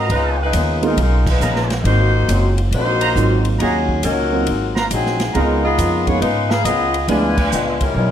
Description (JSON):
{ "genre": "jazz, big band swing", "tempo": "137 BPM", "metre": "4/4", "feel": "swing 66% on 8ths", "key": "unclear", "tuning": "A4 = 440 Hz", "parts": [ { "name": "mellow saxophone section", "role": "melody", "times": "0.0-8.1 s", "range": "Gb3 to F5", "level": "-20 LUFS", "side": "left 2 dB", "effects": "none" }, { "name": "mellow trumpet section", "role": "stabs", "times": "0.0-7.8 s", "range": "Cb5 to Bb5", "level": "-25 LUFS", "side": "right 3 dB", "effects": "none" }, { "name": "upright bass", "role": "bass", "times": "0.0-8.1 s", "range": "Gb1 to Ab2", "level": "-18 LUFS", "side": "equal", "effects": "none" }, { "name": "picked swing-style acoustic guitar", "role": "accompaniment", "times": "0.1-8.1 s", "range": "Ab2 to Bb4", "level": "-26 LUFS", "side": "left 3 dB", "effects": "none" }, { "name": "swinging big-band drum kit", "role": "drums", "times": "0.1-7.9 s", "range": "crash cymbal, hi-hat, kick drum, ride cymbal, snare drum", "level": "-25 LUFS", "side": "equal", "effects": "none" }, { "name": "warm upright piano", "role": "accompaniment", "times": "0.8-7.4 s", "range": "F3 to Bb4", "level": "-22 LUFS", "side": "right 5 dB", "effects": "none" } ], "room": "light reverb", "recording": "none", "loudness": "-14 LUFS", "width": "side -10 dB against mid", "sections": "0.0-8.1 A section", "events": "band accent 1.2, 7.3", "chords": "0.1 Db13; 1.8 Ab13; 3.6 Ebm7; 4.5 Ab13; 5.3 Db13; 7.1 Ddim7", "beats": "| 0.10 0.54 0.97 1.41 | 1.85 2.29 2.72 3.16 | 3.60 4.03 4.47 4.91 | 5.34 5.78 6.22 6.65 | 7.09 7.53 7.96" }